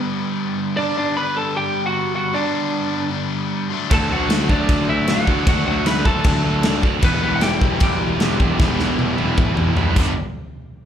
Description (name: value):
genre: punk rock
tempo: 154 BPM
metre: 4/4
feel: straight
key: G major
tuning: A4 = 439 Hz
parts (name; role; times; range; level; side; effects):
- distorted electric guitar; riff; 0.0-10.1 s; G2 to E4; -24 LUFS; left 5 dB; distortion, slapback echo
- lightly driven lead guitar; melody; 0.8-9.7 s; B3 to B5; -23 LUFS; right 1 dB; slapback echo, digital delay
- distorted electric guitar; riff; 3.9-10.1 s; E2 to D4; -25 LUFS; right 12 dB; overdrive, slapback echo
- high-gain distorted guitar; riff; 3.9-10.1 s; G2 to E4; -29 LUFS; equal; none
- fuzz picked electric bass; bass; 3.9-10.1 s; E1 to D2; -23 LUFS; equal; overdrive
- big rock drum kit; drums; 3.9-10.1 s; crash cymbal, kick drum, snare drum, toms; -19 LUFS; equal; none
room: small room ambience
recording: live gig heard through the venue's PA, club reverb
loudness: -16 LUFS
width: side -9 dB against mid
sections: 0.0-10.2 A section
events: drum fill 8.6-10.2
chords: 0.0 G; 3.7 D; 7.0 Em; 10.0 G; 10.2 N.C.